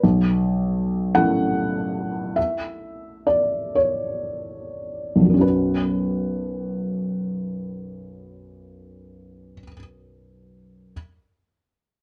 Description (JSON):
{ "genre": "neoclassical minimalist piano", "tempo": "34-54 BPM (dotted quarters)", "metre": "6/8", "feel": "rubato", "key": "unclear", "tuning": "A4 = 440 Hz", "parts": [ { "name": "felt-muted upright piano", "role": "solo", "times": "0.0-10.9 s", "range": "B1 to F#5", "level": "-23 LUFS", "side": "equal", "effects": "none" } ], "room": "moderate studio reverb, RT60 0.8 s", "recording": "worn, warbling old tape, cassette tape, warbly pitch drift", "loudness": "-22 LUFS", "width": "mono", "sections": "0.0-5.4 A section; 5.4-8.7 B section", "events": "slowing down 0.0-5.4", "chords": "0.0 A/B; 5.4 Bsus2" }